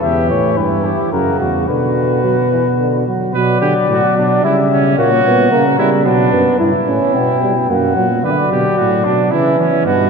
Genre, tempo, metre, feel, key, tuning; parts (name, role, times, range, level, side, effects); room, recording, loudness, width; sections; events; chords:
classical, imitative canzona for brass ensemble; 110 BPM; 3/4; straight; B minor; A4 = 442 Hz
dark trumpet; melody; 0.0-10.1 s; F#4 to G5; -18 LUFS; left 7 dB
warm trumpet; second line; 0.0-10.1 s; C#4 to B4; -19 LUFS; right 4 dB
clear euphonium; accompaniment; 0.0-10.1 s; B2 to E4; -17 LUFS; right 2 dB
mellow bass trombone; bass; 0.0-10.1 s; E2 to E3; -18 LUFS; right 2 dB
wet cathedral reverb, RT60 4.7 s; dark, warm production; -12 LUFS; side -5 dB against mid
0.0-3.3 A section; 3.3-6.6 B section; 6.6-10.1 A section
0.0 Em; 1.1 F#; 1.7 Bm; 4.4 C#dim; 5.0 F#/A#; 6.0 Bm; 6.6 Em/G; 7.7 F#; 8.2 Bm; 9.3 C#m